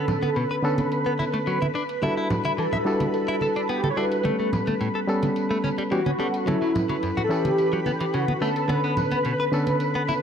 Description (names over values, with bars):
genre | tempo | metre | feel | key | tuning
nu-disco, nu disco | 108 BPM | 4/4 | straight | B minor | A4 = 440 Hz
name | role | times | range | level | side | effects
wide unison lead | melody | 0.0-10.2 s | E4 to C#5 | -27 LUFS | equal | ensemble chorus, analog delay
bright reed electric piano | accompaniment | 0.0-10.2 s | D3 to A4 | -26 LUFS | equal | analog delay
lush unison pad | sustained chords | 0.0-10.2 s | B4 to B5 | -31 LUFS | equal | chorus, phaser
direct-recorded clean electric guitar | riff | 0.0-10.1 s | F#2 to E5 | -29 LUFS | left 2 dB | wide subtle chorus
electronic tambourine and hi-hat | drums | 0.1-10.2 s | none | -46 LUFS | left 2 dB | low-pass filter on perc, low-pass filter on hats, low-pass filter on room
congas | percussion | 0.1-10.2 s | none | -29 LUFS | right 2 dB | none
room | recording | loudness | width
moderate lush hall reverb, RT60 1.9 s | none | -22 LUFS | side -8 dB against mid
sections
0.0-10.2 A section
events
none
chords
0.0 Bm9; 1.8 Em11; 4.2 A9; 6.5 F#m7; 8.4 Bm9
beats
0.36 0.92 1.47 | 2.03 2.58 3.14 3.69 | 4.25 4.81 5.36 5.92 | 6.47 7.03 7.58 8.14 | 8.70 9.25 9.81